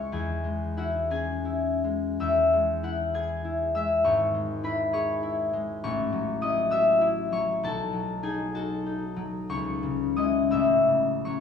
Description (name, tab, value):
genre	classical, solo harp piece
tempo	52-68 BPM (dotted quarters)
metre	6/8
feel	rubato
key	unclear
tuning	A4 = 440 Hz
part	concert harp	solo	0.0-11.4 s	G#1 to G#6	-24 LUFS	left 2 dB	none
room	wet recital hall reverb, RT60 1.6 s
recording	heard from further back in the room, small room ambience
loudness	-24 LUFS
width	side -7 dB against mid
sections	0.0-11.4 A section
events	none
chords	0.1 C#m/E; 2.2 E; 4.1 E/G#; 5.8 F#m7/A; 7.6 B7; 9.5 C#m; 10.5 F#m7/A